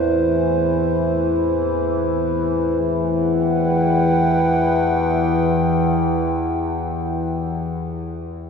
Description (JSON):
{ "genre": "dark ambient drone", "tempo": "free time", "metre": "none", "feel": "none", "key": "E minor", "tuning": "A4 = 440 Hz", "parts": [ { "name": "dark analog pad", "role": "sustained chords", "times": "0.0-7.6 s", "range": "E3 to G5", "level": "-19 LUFS", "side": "left 1 dB", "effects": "chorus" }, { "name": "overtone-sweeping drone", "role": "drone", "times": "0.0-7.6 s", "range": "E2 to E3", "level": "-21 LUFS", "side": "left 1 dB", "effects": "chorus, built-in reverb" } ], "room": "wet cathedral reverb, RT60 6.6 s", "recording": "in a vast, echoing space", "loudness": "-17 LUFS", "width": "side -6 dB against mid", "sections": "0.0-2.8 A section; 2.8-6.8 B section", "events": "none", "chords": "0.0 Am/E; 2.8 Em" }